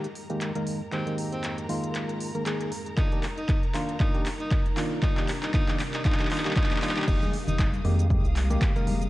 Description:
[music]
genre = deep house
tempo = 117 BPM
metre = 4/4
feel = swing 56% on 16ths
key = F dorian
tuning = A4 = 438 Hz
[part]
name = deep dark ambient pad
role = sustained chords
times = 0.0-9.1 s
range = F2 to Bb4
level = -38 LUFS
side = equal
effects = chorus, built-in reverb, sidechain pumping
[part]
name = percussive organ stab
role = stabs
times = 0.0-9.0 s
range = Eb3 to Bb4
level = -31 LUFS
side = equal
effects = chorus, sidechain pumping, analog delay
[part]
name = deep house drum kit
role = drums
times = 0.0-9.1 s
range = crash cymbal, handclaps, hi-hat, shaker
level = -34 LUFS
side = equal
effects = vintage 12-bit sampler grit
[part]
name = warm symphonic violin section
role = texture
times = 0.0-9.1 s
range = Bb4 to Eb6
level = -42 LUFS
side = equal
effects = none
[part]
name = breathy tenor saxophone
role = melody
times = 0.9-7.7 s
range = C4 to Eb4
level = -35 LUFS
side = left 1 dB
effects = analog delay
[part]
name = electronic kick drum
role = drums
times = 3.0-8.7 s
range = none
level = -25 LUFS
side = equal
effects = vintage 12-bit sampler grit
[part]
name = round analog bass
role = bass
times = 7.1-9.1 s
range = F1 to F2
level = -26 LUFS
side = equal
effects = sidechain pumping
[part]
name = congas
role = percussion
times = 7.2-9.1 s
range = none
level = -34 LUFS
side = left 2 dB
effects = none
[sound]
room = light reverb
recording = cassette tape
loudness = -24 LUFS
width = side -17 dB against mid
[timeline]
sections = 0.0-7.1 A section; 7.1-9.1 B section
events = build-up 0.0-7.1; drum fill 0.0-7.1; filter sweep on synth stab 0.0-7.1; filter sweep on ambient pad 0.0-7.1; drop 7.1-9.1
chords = 0.0 Fm11; 3.0 Cm11; 7.1 Fm11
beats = 0.41 | 0.92 1.44 1.95 2.46 | 2.97 3.49 4.00 4.51 | 5.03 5.54 6.05 6.56 | 7.08 7.59 8.10 8.62

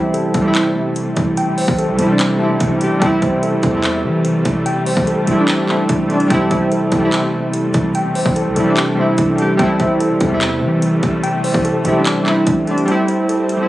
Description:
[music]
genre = hip hop, trap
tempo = 146 BPM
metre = 4/4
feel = half-time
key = A minor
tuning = A4 = 436 Hz
[part]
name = warbly lo-fi synth keys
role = accompaniment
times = 0.0-13.7 s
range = G3 to G4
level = -16 LUFS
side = right 1 dB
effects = chorus
[part]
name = warm symphonic string section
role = sustained chords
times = 0.0-13.7 s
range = A2 to C4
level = -23 LUFS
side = equal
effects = none
[part]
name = mellow tine electric piano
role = arpeggios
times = 0.0-13.7 s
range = A3 to G5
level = -21 LUFS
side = equal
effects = fast stereo tremolo, ping-pong delay
[part]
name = hard-hitting 808-style bass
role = bass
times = 0.0-12.9 s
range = A1 to E3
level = -23 LUFS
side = equal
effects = none
[part]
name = trap drum kit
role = drums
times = 0.1-13.6 s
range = handclaps, hi-hat, kick drum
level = -22 LUFS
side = equal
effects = vintage 12-bit sampler grit
[sound]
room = light reverb, digital ambience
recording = recorded on a phone in the room, studio ambience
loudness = -13 LUFS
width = side -15 dB against mid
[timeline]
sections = 0.0-12.9 A section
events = none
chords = 0.0 Am7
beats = 0.14 0.55 0.96 | 1.37 1.78 2.19 2.60 | 3.02 3.43 3.84 4.25 | 4.66 5.07 5.48 5.89 | 6.30 6.71 7.13 7.54 | 7.95 8.36 8.77 9.18 | 9.59 10.00 10.41 10.82 | 11.24 11.65 12.06 12.47 | 12.88 13.29

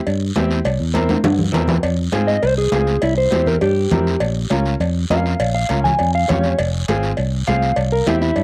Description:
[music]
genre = latin, cumbia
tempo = 202 BPM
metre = 4/4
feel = straight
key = F harmonic minor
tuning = A4 = 437 Hz
[part]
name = fingered electric bass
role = bass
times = 0.1-8.4 s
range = F1 to Ab2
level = -22 LUFS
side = equal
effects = none
[part]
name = congas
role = percussion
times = 0.1-8.4 s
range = none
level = -26 LUFS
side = equal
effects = none
[part]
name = cowbell and timbales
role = percussion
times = 0.1-8.4 s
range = none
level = -27 LUFS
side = equal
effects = none
[part]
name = guiro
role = percussion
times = 0.1-8.4 s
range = none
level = -34 LUFS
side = equal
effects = none
[part]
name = bright upright piano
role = accompaniment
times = 0.4-8.3 s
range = C4 to Bb4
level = -26 LUFS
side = equal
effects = cassette tape
[part]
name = mellow electric guitar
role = melody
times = 2.3-8.4 s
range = E4 to Ab5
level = -22 LUFS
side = equal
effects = spring reverb, cassette tape
[sound]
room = light reverb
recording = home recording on cassette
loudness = -18 LUFS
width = mono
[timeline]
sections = 0.0-1.8 A section; 1.8-8.4 B section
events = drum fill 1.0-1.8; clean electric guitar solo 1.8-8.4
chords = 0.0 C7; 1.8 Fm; 3.0 C7; 4.2 Bbm; 6.6 Fm; 7.8 C7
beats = 0.07 0.36 | 0.66 0.95 1.25 1.54 | 1.84 2.14 2.43 2.73 | 3.03 3.32 3.62 3.92 | 4.21 4.51 4.80 5.10 | 5.40 5.69 5.99 6.29 | 6.58 6.88 7.18 7.47 | 7.77 8.07 8.36

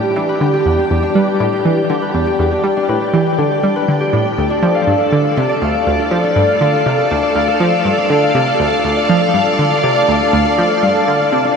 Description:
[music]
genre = ambient, sequencer-driven space music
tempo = 121 BPM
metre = 4/4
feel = straight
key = unclear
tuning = A4 = 439 Hz
[part]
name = string machine, full ensemble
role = sustained chords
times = 0.0-11.6 s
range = G4 to G5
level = -16 LUFS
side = right 1 dB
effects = ensemble chorus
[part]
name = concert harp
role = arpeggios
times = 0.0-11.6 s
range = D4 to F5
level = -18 LUFS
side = left 4 dB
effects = auto-pan, ping-pong delay
[part]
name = analog pluck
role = riff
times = 0.2-11.5 s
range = D2 to G3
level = -16 LUFS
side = right 1 dB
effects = chorus, ping-pong delay
[sound]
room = wet lush hall reverb, RT60 2.9 s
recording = none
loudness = -12 LUFS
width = side -6 dB against mid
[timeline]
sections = 0.0-11.6 A section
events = none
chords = 0.0 Em7; 4.4 Dm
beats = | 0.41 0.91 1.40 1.90 | 2.40 2.89 3.39 3.88 | 4.38 4.87 5.37 5.87 | 6.36 6.86 7.35 7.85 | 8.35 8.84 9.34 9.83 | 10.33 10.82 11.32

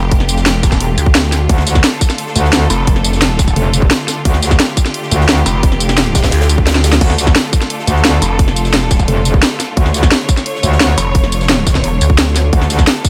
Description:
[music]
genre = dark technical drum and bass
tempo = 174 BPM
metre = 4/4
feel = straight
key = D harmonic minor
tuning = A4 = 440 Hz
[part]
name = bright studio string section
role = sustained chords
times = 0.0-13.1 s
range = D3 to C#5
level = -24 LUFS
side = equal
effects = sidechain pumping
[part]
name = pulsing pluck wobble bass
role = bass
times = 0.0-12.5 s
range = E1 to D2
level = -17 LUFS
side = equal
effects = chorus
[part]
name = drum and bass drum kit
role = drums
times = 0.1-13.1 s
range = crash cymbal, hi-hat, snare drum, tambourine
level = -17 LUFS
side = equal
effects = none
[part]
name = electronic kick drum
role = drums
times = 0.1-13.1 s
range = none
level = -14 LUFS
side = equal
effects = overdrive
[part]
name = huge arena drum kit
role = drums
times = 0.1-13.1 s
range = hi-hat, snare drum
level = -27 LUFS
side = equal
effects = high-pass filter on hats, high-pass filter on snare, high-pass filter on room
[part]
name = metallic wobble bass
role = bass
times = 1.5-12.9 s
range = F1 to D2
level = -15 LUFS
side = equal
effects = chorus, overdrive, sidechain pumping
[sound]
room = small room ambience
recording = none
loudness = -12 LUFS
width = mono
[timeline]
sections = 0.0-13.1 A section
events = drum fill 6.7-7.0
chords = 0.0 Dm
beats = | 0.12 0.46 0.81 1.15 | 1.50 1.84 2.18 2.53 | 2.87 3.22 3.56 3.91 | 4.25 4.60 4.94 5.29 | 5.63 5.98 6.32 6.67 | 7.01 7.36 7.70 8.05 | 8.39 8.74 9.08 9.43 | 9.77 10.12 10.46 10.80 | 11.15 11.49 11.84 12.18 | 12.53 12.87

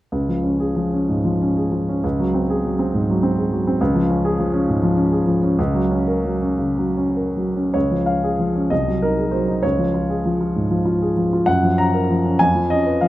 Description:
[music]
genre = classical, romantic character piece for solo piano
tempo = 48-70 BPM (dotted quarters)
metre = 6/8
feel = rubato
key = Db major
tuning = A4 = 440 Hz
[part]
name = warm grand piano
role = solo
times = 0.1-13.1 s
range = C2 to Bb5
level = -17 LUFS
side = equal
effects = none
[sound]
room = moderate recital hall reverb, RT60 1.4 s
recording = close, detailed microphones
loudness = -17 LUFS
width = side -15 dB against mid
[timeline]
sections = 0.1-7.7 A section; 7.7-13.1 B section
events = none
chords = 0.1 Db; 2.0 Ab7/Db; 3.8 Db; 5.6 Gb/Db; 7.7 Db; 8.7 Ab7/C; 9.6 Db; 11.5 Gbmaj7; 12.4 Db7/F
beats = | 0.12 1.09 | 2.03 2.93 | 3.80 4.68 | 5.58 6.60 | 7.75 8.71 | 9.63 10.55 | 11.47 12.40

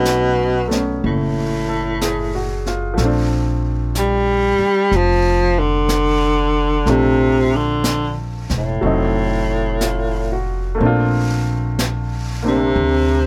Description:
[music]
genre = jazz ballad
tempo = 61 BPM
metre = 4/4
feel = swing 66% on 8ths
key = Bb major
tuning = A4 = 444 Hz
[part]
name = breathy baritone saxophone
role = melody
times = 0.0-13.3 s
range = A2 to G3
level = -20 LUFS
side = equal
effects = none
[part]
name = bright upright piano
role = accompaniment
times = 0.0-13.3 s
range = F3 to A4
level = -25 LUFS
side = equal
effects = none
[part]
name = upright bass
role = bass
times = 0.0-13.3 s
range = E1 to D2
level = -23 LUFS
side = equal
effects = none
[part]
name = jazz brush drum kit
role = drums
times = 0.1-13.3 s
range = brushed snare drum, hi-hat, snare drum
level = -30 LUFS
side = equal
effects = none
[sound]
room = light reverb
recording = none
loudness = -18 LUFS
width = mono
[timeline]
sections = 0.0-10.8 A section; 10.8-13.3 B section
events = baritone saxophone solo 10.8-13.3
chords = 0.0 B9; 3.0 Bbmaj9; 8.8 F7b9; 10.8 Bbmaj9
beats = 0.06 1.04 2.01 | 2.98 3.94 4.91 5.88 | 6.86 7.84 8.82 9.81 | 10.80 11.78 12.76

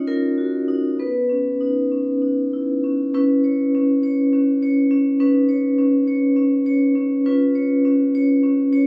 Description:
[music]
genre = classical, contemporary piece for solo vibraphone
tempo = 201 BPM (eighths)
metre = 7/8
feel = uneven beats, rubato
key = unclear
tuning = A4 = 439 Hz
[part]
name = vibraphone with medium hard mallets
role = solo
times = 0.0-8.9 s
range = B3 to D#5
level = -16 LUFS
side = equal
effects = none
[sound]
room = moderate recital hall reverb, RT60 1.7 s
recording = recorded on a phone in the room, studio ambience, faint mains hum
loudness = -16 LUFS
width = side -30 dB against mid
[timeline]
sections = 0.0-3.1 A section; 3.1-8.9 B section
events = none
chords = 0.0 C#add9; 1.0 Badd9; 3.1 C#m7; 5.2 Badd9/C#; 7.3 C#7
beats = 0.07 0.37 0.68 | 0.99 1.30 1.61 1.92 2.22 2.53 2.83 | 3.14 3.44 3.74 4.03 4.32 4.62 4.91 | 5.20 5.49 5.78 6.08 6.37 6.66 6.96 | 7.25 7.55 7.84 8.14 8.43 8.72

